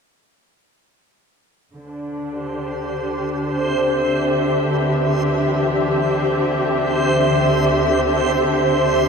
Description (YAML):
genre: ambient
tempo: 71 BPM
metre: 4/4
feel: straight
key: unclear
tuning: A4 = 438 Hz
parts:
  - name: muted studio string section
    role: sustained chords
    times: 1.7-9.1 s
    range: D3 to E5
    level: -18 LUFS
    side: equal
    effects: shimmer reverb
  - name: warm studio double bass section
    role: bass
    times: 1.7-9.1 s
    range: D2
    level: -35 LUFS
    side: equal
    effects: tube saturation
  - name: backwards swelling texture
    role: texture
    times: 2.5-9.1 s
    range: C5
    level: -22 LUFS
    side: right 1 dB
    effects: built-in reverb, shimmer reverb
  - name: electric guitar at the edge of break-up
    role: arpeggios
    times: 3.0-9.1 s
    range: E3 to B4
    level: -34 LUFS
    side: left 3 dB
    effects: none
room: wet huge ambient reverb, RT60 8.4 s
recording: in a vast, echoing space, cassette tape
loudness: -17 LUFS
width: side -5 dB against mid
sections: 1.7-9.1 A section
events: fade-in on double bass section 1.7-9.1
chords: 1.7 D9sus4